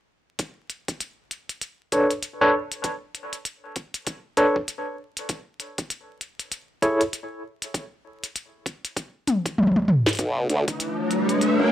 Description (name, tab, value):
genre	glitch hop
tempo	98 BPM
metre	4/4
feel	swing 60% on 16ths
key	B dorian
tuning	A4 = 439 Hz
part	electronic kick drum	drums	0.4-10.8 s	none	-33 LUFS	equal	overdrive, high-pass filter on kick, studio reverb
part	glitchy drum kit	drums	0.4-11.6 s	hi-hat, snare drum, toms	-24 LUFS	equal	studio reverb
part	barky tine electric piano	stabs	1.9-7.0 s	D4 to C#5	-21 LUFS	equal	medium tremolo, vintage 12-bit sampler grit, sidechain pumping, low-pass filter, tape echo
part	warbly tape-like pad	sustained chords	10.5-11.7 s	A3 to C#5	-23 LUFS	equal	chorus, built-in reverb, sidechain pumping
part	formant-sweep wobble bass	bass	10.2-11.7 s	B1 to F#2	-22 LUFS	equal	chorus, high-pass filter
part	riser	sound effects	10.4-11.7 s	none	-25 LUFS	left 1 dB	none
room	moderate small room reverb, RT60 0.5 s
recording	dry, gritty hardware recording, vinyl crackle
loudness	-23 LUFS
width	side -12 dB against mid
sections	0.4-10.2 A section; 10.2-11.7 B section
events	filter sweep on tine electric piano 0.4-10.2; drum fill 9.3-10.2; build-up 10.2-11.7; filter sweep 10.2-11.7; riser 10.4-11.7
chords	0.4 Bm9; 5.3 Amaj7; 10.2 Bm9